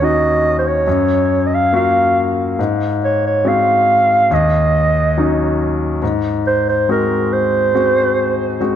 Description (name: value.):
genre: acoustic folk-pop ballad.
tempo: 70 BPM.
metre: 4/4.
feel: straight.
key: unclear.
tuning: A4 = 440 Hz.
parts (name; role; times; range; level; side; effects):
growling clarinet; melody; 0.0-8.6 s; Bb4 to F5; -15 LUFS; right 2 dB; tape echo.
clear concert grand piano; accompaniment; 0.0-8.8 s; Eb2 to Gb4; -16 LUFS; left 2 dB; none.
room: wet large studio reverb, RT60 1.4 s.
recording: dark, warm production.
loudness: -13 LUFS.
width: side -9 dB against mid.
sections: 0.0-8.8 A section.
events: none.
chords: 0.0 Ebm7; 0.9 Gbmaj7; 2.6 Ab7; 4.3 Ebm7; 6.0 Ab7.